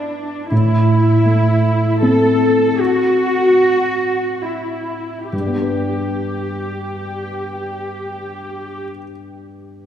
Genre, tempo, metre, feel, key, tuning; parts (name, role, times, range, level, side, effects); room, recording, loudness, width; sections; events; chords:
cinematic, emotional film score for orchestra; free time; G major; A4 = 440 Hz
felt-muted upright piano; accompaniment; 0.0-9.9 s; G2 to B4; -18 LUFS; equal
muted symphonic cello section; bass; 0.0-8.8 s; D4 to A4; -18 LUFS; equal
wet concert hall reverb, RT60 2.3 s; heard from further back in the room; -15 LUFS; side -10 dB against mid
0.0-5.3 A section; 5.3-9.9 B section
slowing down 0.0-5.3
0.0 G (rootless); 0.5 Am; 5.3 G